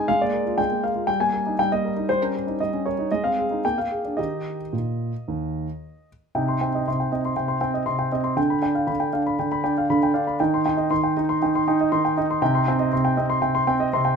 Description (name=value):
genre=classical-period piano sonatina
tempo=119 BPM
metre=4/4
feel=rubato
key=Eb major, C minor from 6.4 s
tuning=A4 = 439 Hz
part: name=warm concert grand piano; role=solo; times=0.0-14.2 s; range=Eb2 to C6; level=-20 LUFS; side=equal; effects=none
room=light reverb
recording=minimal, uncompressed stereo recording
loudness=-21 LUFS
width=side -6 dB against mid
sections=0.0-6.4 A section; 6.4-14.2 B section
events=none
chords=0.1 Bb5/Ab; 1.1 Eb/G; 2.1 Eb7/G; 3.1 Ab; 3.6 Bb7; 4.2 Eb; 6.4 Cm; 8.4 G7/D; 10.4 Cm/Eb; 12.4 Cm